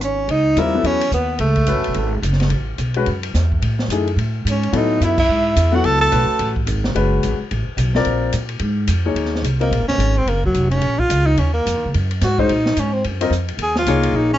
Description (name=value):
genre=modal jazz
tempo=217 BPM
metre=4/4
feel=swing 60% on 8ths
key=F# dorian, Eb dorian from 9.2 s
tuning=A4 = 441 Hz
part: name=warm tenor saxophone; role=melody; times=0.0-2.2, 4.5-6.5, 9.6-14.4 s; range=Gb3 to A4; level=-19 LUFS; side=equal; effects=plate reverb
part: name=clear alto saxophone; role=second line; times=0.0-2.2, 4.5-6.5 s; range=A4 to A5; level=-25 LUFS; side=right 5 dB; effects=none
part: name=upright bass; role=bass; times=0.0-14.4 s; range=Eb1 to A#2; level=-19 LUFS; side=equal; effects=none
part: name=open jazz drum kit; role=drums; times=0.0-14.1 s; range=crash cymbal, hi-hat, kick drum, ride cymbal, rim click, snare drum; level=-26 LUFS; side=equal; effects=none
part: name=warm upright piano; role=accompaniment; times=0.6-9.7, 12.4-14.3 s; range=E3 to Eb5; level=-21 LUFS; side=left 5 dB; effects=none
room=moderate club ambience, RT60 0.5 s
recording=nothing above 7.7 kHz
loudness=-16 LUFS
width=side -12 dB against mid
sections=0.3-9.2 A section; 9.2-14.4 B section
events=band accent 5.1; tenor saxophone solo 9.2-14.4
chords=0.3 F#m11; 8.1 A#7; 9.2 Ebm11